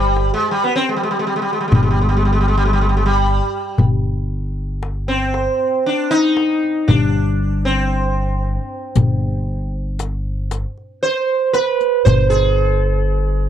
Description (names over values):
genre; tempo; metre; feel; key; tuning
Arabic maqam ensemble; 116 BPM (eighths); 10/8; straight; G maqam hijaz; A4 = 439 Hz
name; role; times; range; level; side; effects
sitar; melody; 0.0-13.5 s; G3 to C5; -18 LUFS; right 1 dB; none
upright bass; bass; 0.0-13.5 s; G1; -18 LUFS; equal; none
darbuka; percussion; 0.2-12.3 s; none; -18 LUFS; left 2 dB; none
riq; percussion; 9.0-12.3 s; none; -32 LUFS; left 11 dB; none
room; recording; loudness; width
little or no reverb; dry, close 1970s-style studio recording; -15 LUFS; side -10 dB against mid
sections
0.0-13.5 A section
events
none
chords
none